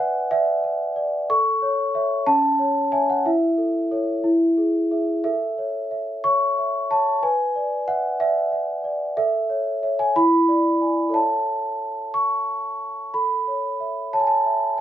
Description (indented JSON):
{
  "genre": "classical, lullaby for celesta",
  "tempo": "61 BPM (dotted quarters)",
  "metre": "6/8",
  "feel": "straight",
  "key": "A major",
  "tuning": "A4 = 443 Hz",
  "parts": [
    { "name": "large celesta", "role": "solo", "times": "0.0-14.8 s", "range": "C#4 to C#6", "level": "-19 LUFS", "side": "equal", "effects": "none" }
  ],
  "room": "moderate studio reverb, RT60 0.6 s",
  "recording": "none",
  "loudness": "-19 LUFS",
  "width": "side -11 dB against mid",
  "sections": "0.0-13.1 A section; 13.1-14.8 B section",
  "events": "none",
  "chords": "0.0 E7/B; 1.3 A; 2.3 A/C#; 3.2 A/E; 4.2 E; 5.2 A; 7.2 E7/B; 9.2 A; 10.2 E7; 11.1 A"
}